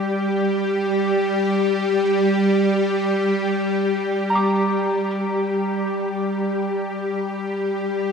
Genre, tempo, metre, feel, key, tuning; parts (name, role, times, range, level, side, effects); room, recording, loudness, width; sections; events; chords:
ambient; free time; G minor; A4 = 440 Hz
bowed-like drone; drone; 0.0-8.1 s; G3 to G4; -19 LUFS; equal; built-in reverb
soft synth bell; arpeggios; 4.3-8.1 s; Bb5 to D6; -27 LUFS; equal; chorus, phaser, tape echo
wet cathedral reverb, RT60 5.5 s; -19 LUFS; side -6 dB against mid
0.0-8.1 A section
0.0 G5; 4.3 Gm